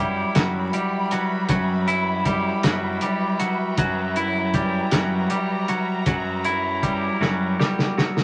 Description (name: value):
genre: psychedelic rock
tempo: 52 BPM (dotted quarters)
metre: 6/8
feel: straight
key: unclear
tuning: A4 = 440 Hz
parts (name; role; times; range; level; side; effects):
- warm studio string section; sustained chords; 0.0-8.2 s; B4 to B5; -33 LUFS; equal; none
- twelve-string electric guitar; riff; 0.0-8.2 s; F#3 to E4; -25 LUFS; equal; none
- fuzz picked electric bass; bass; 0.0-7.5 s; F#2; -31 LUFS; equal; overdrive
- cloth-damped thuddy drum kit; drums; 0.4-8.2 s; hi-hat, kick drum, snare drum; -26 LUFS; equal; none
room: moderate club reverb, RT60 0.7 s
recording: vinyl crackle, nothing above 11.0 kHz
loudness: -23 LUFS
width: mono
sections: 0.0-8.2 A section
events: drum fill 7.2-8.2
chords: 0.0 Em/F#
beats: 0.36 | 1.50 2.63 | 3.78 4.92 | 6.06 7.21